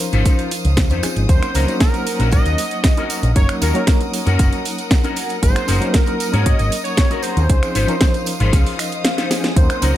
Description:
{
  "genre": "nu-disco, nu disco",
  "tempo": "116 BPM",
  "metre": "4/4",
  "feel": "straight",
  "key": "unclear",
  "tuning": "A4 = 440 Hz",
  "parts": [
    { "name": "reed electric piano", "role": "accompaniment", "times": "0.0-10.0 s", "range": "F3 to Db5", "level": "-25 LUFS", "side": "equal", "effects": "fast tremolo, sidechain pumping, tape echo" },
    { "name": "clear studio string section", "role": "sustained chords", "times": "0.0-10.0 s", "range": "Db4 to Eb6", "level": "-29 LUFS", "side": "equal", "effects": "vintage 12-bit sampler grit, sidechain pumping" },
    { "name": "electric guitar with an envelope filter", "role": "riff", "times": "0.0-10.0 s", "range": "Db4 to Ab5", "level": "-26 LUFS", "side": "left 5 dB", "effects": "ensemble chorus" },
    { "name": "house drum kit", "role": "drums", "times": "0.0-9.9 s", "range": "finger snaps, hi-hat, snare drum", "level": "-23 LUFS", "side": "equal", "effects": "none" },
    { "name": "tambourine", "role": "percussion", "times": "0.0-9.9 s", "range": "none", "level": "-32 LUFS", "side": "right 11 dB", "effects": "none" },
    { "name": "picked electric bass with an envelope filter", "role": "bass", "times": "0.1-9.9 s", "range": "Gb1 to Ab2", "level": "-17 LUFS", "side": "equal", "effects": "none" },
    { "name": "electronic kick drum", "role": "drums", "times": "0.3-9.7 s", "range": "none", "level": "-15 LUFS", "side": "equal", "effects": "none" },
    { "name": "wide unison lead", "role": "melody", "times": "1.3-10.0 s", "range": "Bb4 to Eb5", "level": "-25 LUFS", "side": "equal", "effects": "digital delay" }
  ],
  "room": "digital ambience",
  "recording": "none",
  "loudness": "-14 LUFS",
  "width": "side -13 dB against mid",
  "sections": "0.0-10.0 A section",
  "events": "clean electric guitar fill 8.5-9.6; drum fill 9.2-9.6",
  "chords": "0.0 Dbmaj9; 1.3 Ebm7; 3.4 Gb6; 5.4 Ab9sus4; 7.5 Dbmaj9"
}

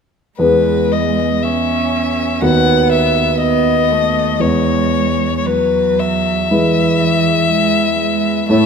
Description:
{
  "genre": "classical, slow romantic movement for piano trio",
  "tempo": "52-63 BPM",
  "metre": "4/4",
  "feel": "rubato",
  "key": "E major",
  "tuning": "A4 = 440 Hz",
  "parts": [
    { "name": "rich violin", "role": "melody", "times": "0.4-8.7 s", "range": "B4 to F#5", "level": "-16 LUFS", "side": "left 7 dB", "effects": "none" },
    { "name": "warm cello", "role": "second line", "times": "0.4-8.7 s", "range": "E3 to C#4", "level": "-18 LUFS", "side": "right 9 dB", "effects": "none" },
    { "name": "warm baby grand piano", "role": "accompaniment", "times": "0.4-8.7 s", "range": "D#2 to C#5", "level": "-16 LUFS", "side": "equal", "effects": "none" }
  ],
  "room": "moderate scoring stage reverb, RT60 1.9 s",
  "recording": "none",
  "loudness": "-12 LUFS",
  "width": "side -6 dB against mid",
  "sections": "0.4-8.7 A section",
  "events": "none",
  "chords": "0.4 E; 2.4 B/D#; 4.4 E"
}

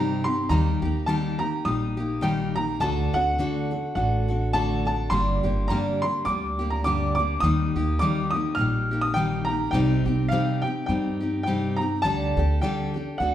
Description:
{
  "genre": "acoustic folk duo or small band",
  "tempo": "104 BPM",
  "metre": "4/4",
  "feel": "swing 57% on 8ths",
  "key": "unclear",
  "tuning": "A4 = 437 Hz",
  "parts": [
    { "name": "clear upright piano", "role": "melody", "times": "0.0-13.3 s", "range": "F5 to F6", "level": "-27 LUFS", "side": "equal", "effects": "none" },
    { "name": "picked steel-string acoustic guitar", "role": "accompaniment", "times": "0.0-13.3 s", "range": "G2 to A4", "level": "-25 LUFS", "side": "left 1 dB", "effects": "none" },
    { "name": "upright bass", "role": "bass", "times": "0.0-13.3 s", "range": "G1 to G2", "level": "-27 LUFS", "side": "right 1 dB", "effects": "none" }
  ],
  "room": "wet large studio reverb, RT60 1.1 s",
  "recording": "heard from further back in the room",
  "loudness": "-22 LUFS",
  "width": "side -11 dB against mid",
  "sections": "0.0-13.3 A section",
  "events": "none",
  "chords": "0.5 Eb; 2.8 D; 5.1 Gm; 7.4 Eb; 9.7 Cm; 12.0 Dsus4"
}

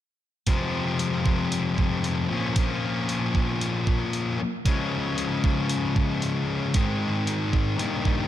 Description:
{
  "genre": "indie rock",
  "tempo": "115 BPM",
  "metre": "4/4",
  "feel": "straight",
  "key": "F minor",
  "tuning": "A4 = 440 Hz",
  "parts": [
    { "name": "thick fuzz guitar", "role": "riff", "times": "0.5-8.3 s", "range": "F2 to F4", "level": "-24 LUFS", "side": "left 2 dB", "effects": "distortion" },
    { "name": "gated 80s digital drum machine", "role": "drums", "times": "0.5-8.2 s", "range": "hi-hat, kick drum", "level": "-25 LUFS", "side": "right 2 dB", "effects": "none" }
  ],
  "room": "moderate lush hall reverb, RT60 1.9 s",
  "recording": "big arena sound",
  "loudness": "-23 LUFS",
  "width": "side -12 dB against mid",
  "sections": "0.5-8.3 A section",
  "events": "none",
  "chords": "0.5 Fm; 2.3 Bbm; 4.7 Db; 6.7 Ab"
}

